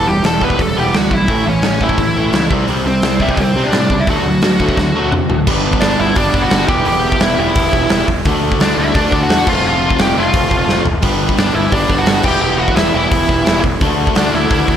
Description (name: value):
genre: punk rock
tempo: 173 BPM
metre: 4/4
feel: straight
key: G major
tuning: A4 = 440 Hz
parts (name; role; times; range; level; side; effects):
- smooth overdriven lead guitar; melody; 0.0-14.8 s; C4 to B5; -18 LUFS; equal; digital delay
- distorted electric guitar; riff; 0.0-14.8 s; A2 to G4; -16 LUFS; equal; distortion
- fuzz picked electric bass; bass; 0.0-14.8 s; E1 to C3; -21 LUFS; equal; overdrive
- big rock drum kit; drums; 0.2-14.8 s; crash cymbal, hi-hat, kick drum, snare drum, toms; -17 LUFS; equal; none
room: moderate lush hall reverb, RT60 1.6 s, small room reverb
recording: big arena sound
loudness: -12 LUFS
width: side -9 dB against mid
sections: 0.0-5.5 A section; 5.5-14.8 B section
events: drum fill 4.8-5.5, 10.7-11.0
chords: 0.0 Em; 1.3 A; 2.5 C5; 4.1 D; 5.5 G; 6.7 Em; 8.3 D; 9.5 F; 11.0 G; 12.3 Em; 13.8 D